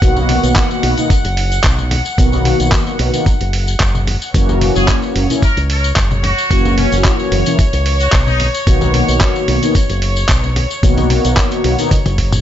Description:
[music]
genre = nu-disco, nu disco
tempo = 111 BPM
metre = 4/4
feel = swing 53% on 16ths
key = unclear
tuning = A4 = 441 Hz
[part]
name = mellow synth brass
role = accompaniment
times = 0.0-11.9 s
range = D#3 to F#4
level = -18 LUFS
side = left 1 dB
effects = chorus, sidechain pumping, ping-pong delay
[part]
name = warm studio violin section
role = sustained chords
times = 0.0-12.4 s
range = C#5 to F#5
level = -23 LUFS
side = left 1 dB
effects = sidechain pumping
[part]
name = fingered electric bass with an envelope filter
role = bass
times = 0.0-12.4 s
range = F#1 to C#2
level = -16 LUFS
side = equal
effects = none
[part]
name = dusty soul sampler-style drum kit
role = drums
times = 0.0-12.4 s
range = handclaps, hi-hat, tambourine, toms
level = -20 LUFS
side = equal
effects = none
[part]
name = electronic kick drum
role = drums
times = 0.0-12.3 s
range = none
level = -14 LUFS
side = equal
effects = none
[part]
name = tambourine and congas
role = percussion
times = 0.0-12.4 s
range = none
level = -25 LUFS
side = left 3 dB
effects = none
[part]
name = muted trumpet section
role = melody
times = 4.8-8.5 s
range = C#4 to A#4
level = -21 LUFS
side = right 1 dB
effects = ping-pong delay
[sound]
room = digital ambience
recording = nothing above 7.7 kHz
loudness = -12 LUFS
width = side -11 dB against mid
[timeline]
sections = 0.0-12.4 A section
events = drum fill 11.9-12.4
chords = 0.0 Bmaj7; 4.3 F#7; 8.4 Bmaj7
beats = | 0.02 0.56 1.10 1.64 | 2.18 2.72 3.26 3.80 | 4.34 4.88 5.42 5.97 | 6.51 7.05 7.59 8.13 | 8.67 9.21 9.75 10.29 | 10.83 11.37 11.91

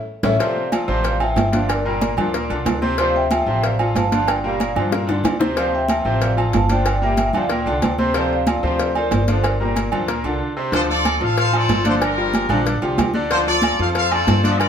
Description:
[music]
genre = latin, salsa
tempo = 186 BPM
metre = 4/4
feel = straight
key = D minor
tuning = A4 = 440 Hz
[part]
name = vibraphone with soft mallets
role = melody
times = 0.2-10.4 s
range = A4 to A5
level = -23 LUFS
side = equal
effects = none
[part]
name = bright concert grand piano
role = accompaniment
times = 0.2-14.7 s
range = Bb2 to D5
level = -23 LUFS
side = equal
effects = none
[part]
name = upright bass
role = bass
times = 0.2-14.7 s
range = G1 to G2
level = -23 LUFS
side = equal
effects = none
[part]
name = congas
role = percussion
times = 0.2-14.7 s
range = none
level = -25 LUFS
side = left 1 dB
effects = none
[part]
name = cowbell and bongos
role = percussion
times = 0.2-14.7 s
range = none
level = -27 LUFS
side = left 4 dB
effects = none
[part]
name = timbales and agogo bells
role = percussion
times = 0.2-14.7 s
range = none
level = -26 LUFS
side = right 6 dB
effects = none
[part]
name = clear trombone section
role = second line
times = 0.4-14.6 s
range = D3 to G3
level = -28 LUFS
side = left 2 dB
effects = none
[part]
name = brilliant trumpet section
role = melody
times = 10.7-14.7 s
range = D4 to F5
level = -20 LUFS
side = left 2 dB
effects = none
[sound]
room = moderate stone room reverb, RT60 0.9 s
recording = band playing live in one room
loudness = -16 LUFS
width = side -8 dB against mid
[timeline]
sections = 0.4-10.7 A section; 10.7-14.7 B section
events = drum fill 0.0-0.4, 4.9-5.6; band accent 0.0-0.4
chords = 0.4 Dm7; 1.7 Gm7; 3.0 Dm7; 4.3 Gm7; 5.6 Dm7; 6.9 Gm7; 8.1 Dm7; 9.4 Gm7; 10.7 Dm7; 12.0 Gm7; 13.3 Dm7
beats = 0.08 | 0.40 0.73 1.05 1.37 | 1.69 2.02 2.34 2.66 | 2.98 3.31 3.63 3.95 | 4.28 4.60 4.92 5.24 | 5.57 5.89 6.21 6.53 | 6.86 7.18 7.50 7.83 | 8.15 8.47 8.79 9.12 | 9.44 9.76 10.09 10.41 | 10.73 11.05 11.38 11.70 | 12.02 12.34 12.66 12.99 | 13.31 13.63 13.95 14.28 | 14.60

